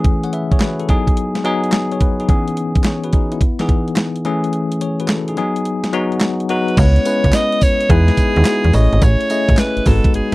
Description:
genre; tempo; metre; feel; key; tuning
R&B, new jack swing; 107 BPM; 4/4; swing 67% on 16ths; C# minor; A4 = 440 Hz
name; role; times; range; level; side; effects
bell-like tine electric piano; accompaniment; 0.0-10.3 s; E3 to F#5; -18 LUFS; left 2 dB; fast stereo tremolo
crisp 8-bit digital drum machine; drums; 0.0-10.3 s; crash cymbal, handclaps, hi-hat, kick drum, snare drum, tambourine; -16 LUFS; equal; none
bright alto saxophone; melody; 6.5-10.3 s; G#4 to D#5; -18 LUFS; right 1 dB; none
slap-like FM bass; bass; 6.8-10.3 s; G#1 to E2; -13 LUFS; equal; none
room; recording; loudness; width
little or no reverb; dry, close 1970s-style studio recording; -13 LUFS; side -20 dB against mid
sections
0.0-6.8 A section; 6.8-10.3 B section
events
kick muted 4.5-6.8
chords
0.0 Amaj7; 0.9 G#m7; 2.3 C#m7; 3.4 Emaj7; 4.2 Amaj7; 5.4 G#m7; 6.8 C#m7; 7.9 Emaj7; 8.7 Amaj7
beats
| 0.04 0.60 1.17 1.73 | 2.29 2.85 3.41 3.97 | 4.53 5.09 5.65 6.21 | 6.77 7.33 7.89 8.46 | 9.02 9.58 10.14

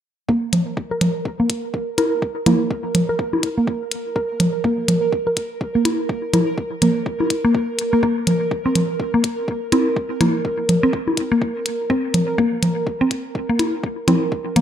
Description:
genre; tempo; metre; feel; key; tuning
minimal techno; 124 BPM; 4/4; swing 59% on 16ths; unclear; A4 = 440 Hz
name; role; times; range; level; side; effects
mallet-like synth pluck; riff; 0.3-14.6 s; Bb3 to Bb4; -21 LUFS; equal; chorus, sidechain pumping, dub echo
electronic kick drum; drums; 0.3-14.4 s; none; -26 LUFS; equal; high-pass filter on kick, studio reverb
pulsing gated texture; texture; 1.0-14.6 s; Bb4; -25 LUFS; right 3 dB; chorus, built-in reverb, sidechain pumping
electronic hi-hat; drums; 0.5-14.6 s; none; -24 LUFS; left 3 dB; studio reverb
congas and bongos; percussion; 0.5-14.6 s; none; -20 LUFS; equal; studio reverb, dub echo
room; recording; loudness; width
moderate digital room reverb, RT60 1.1 s, digital ambience; dark, warm production; -18 LUFS; side -9 dB against mid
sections
0.3-14.6 A section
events
filter sweep on synth arpeggio sound 0.3-14.6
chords
none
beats
| 0.29 0.77 1.25 1.74 | 2.22 2.71 3.19 3.67 | 4.16 4.64 5.12 5.61 | 6.09 6.58 7.06 7.54 | 8.03 8.51 9.00 9.48 | 9.96 10.45 10.93 11.42 | 11.90 12.38 12.87 13.35 | 13.84 14.32

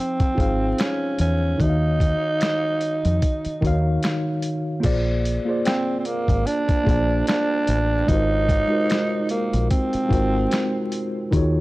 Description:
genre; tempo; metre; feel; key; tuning
lo-fi hip hop; 74 BPM; 4/4; swing 56% on 16ths; unclear; A4 = 440 Hz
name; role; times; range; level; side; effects
growling tenor saxophone; melody; 0.0-10.9 s; Bb3 to Eb4; -23 LUFS; right 2 dB; low-pass filter, analog delay
mellow tine electric piano; accompaniment; 0.0-11.6 s; Eb3 to F5; -25 LUFS; left 1 dB; medium stereo tremolo, cassette tape, low-pass filter
deep dub fingered electric bass; bass; 0.2-11.6 s; Ab1 to F2; -22 LUFS; equal; transformer saturation
lo-fi sampler-style drum kit; drums; 0.2-11.5 s; crash cymbal, finger snaps, hi-hat, kick drum, snare drum; -24 LUFS; equal; vintage 12-bit sampler grit
room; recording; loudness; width
little or no reverb; dry, gritty hardware recording, transformer saturation, vinyl crackle; -19 LUFS; side -19 dB against mid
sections
0.0-4.8 A section; 4.8-11.6 B section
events
none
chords
0.0 Fm7; 1.6 Ebm7; 4.8 Bb9; 8.1 Ab13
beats
0.79 | 1.60 2.41 3.22 4.03 | 4.84 5.65 6.46 7.27 | 8.08 8.89 9.70 10.52 | 11.33

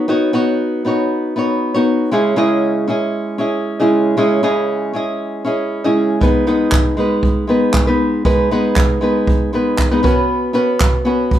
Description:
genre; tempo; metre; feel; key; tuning
acoustic pop; 117 BPM; 4/4; swing 55% on 16ths; unclear; A4 = 441 Hz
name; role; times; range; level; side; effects
nylon-string guitar; accompaniment; 0.0-11.4 s; C#3 to D#5; -14 LUFS; equal; none
jazz brush drum kit; drums; 6.2-11.4 s; handclaps, kick drum; -16 LUFS; right 1 dB; none
room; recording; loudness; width
wet studio ambience, RT60 0.5 s; heard from further back in the room; -14 LUFS; side -11 dB against mid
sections
0.0-11.4 A section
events
none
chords
0.0 Badd9; 2.1 C#madd9; 6.2 G#m; 10.0 Bsus2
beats
| 0.08 0.59 1.10 1.61 | 2.12 2.63 3.15 3.66 | 4.17 4.68 5.19 5.70 | 6.21 6.72 7.24 7.75 | 8.26 8.77 9.28 9.79 | 10.30 10.80 11.31

